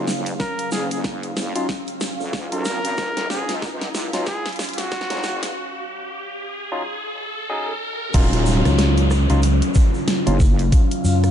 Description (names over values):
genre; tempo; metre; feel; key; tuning
glitch hop; 93 BPM; 4/4; swing 59% on 16ths; Eb minor; A4 = 441 Hz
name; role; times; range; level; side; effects
warbly tape-like pad; sustained chords; 0.0-11.3 s; Db3 to F5; -32 LUFS; equal; chorus, built-in reverb, sidechain pumping
barky tine electric piano; stabs; 0.0-10.4 s; Gb3 to Ab4; -27 LUFS; equal; overdrive, sidechain pumping, dub echo
wobble bass; bass; 0.0-10.7 s; Eb1 to Db2; -24 LUFS; equal; chorus, overdrive, high-pass filter
riser and downlifter; sound effects; 0.5-11.3 s; none; -29 LUFS; equal; none
airy breathy pad; texture; 0.0-11.3 s; Gb3 to F5; -29 LUFS; left 1 dB; chorus, sidechain pumping
dubstep drum kit; drums; 0.1-11.3 s; crash cymbal, hi-hat, rim click, snare drum; -27 LUFS; equal; studio reverb
tube shaker; percussion; 0.1-11.3 s; none; -36 LUFS; right 2 dB; none
clear trumpet; melody; 0.4-5.4 s; Gb4 to Bb4; -29 LUFS; equal; vintage 12-bit sampler grit, dub echo
electronic kick drum; drums; 0.4-10.9 s; none; -17 LUFS; equal; studio reverb
fingered electric bass; bass; 8.7-11.3 s; Db2 to Gb2; -16 LUFS; equal; none
room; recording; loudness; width
light reverb, digital ambience; dark, warm production, high-pass filter, nothing above 10.9 kHz; -19 LUFS; side -10 dB against mid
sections
0.0-8.1 A section; 8.1-11.3 B section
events
build-up 0.0-8.1; drum fill 0.0-5.6; filter sweep on tine electric piano 0.0-8.1; filter sweep 0.0-8.1; riser 0.5-8.1; break 5.6-8.1; drop 8.1-11.3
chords
0.0 Ebm9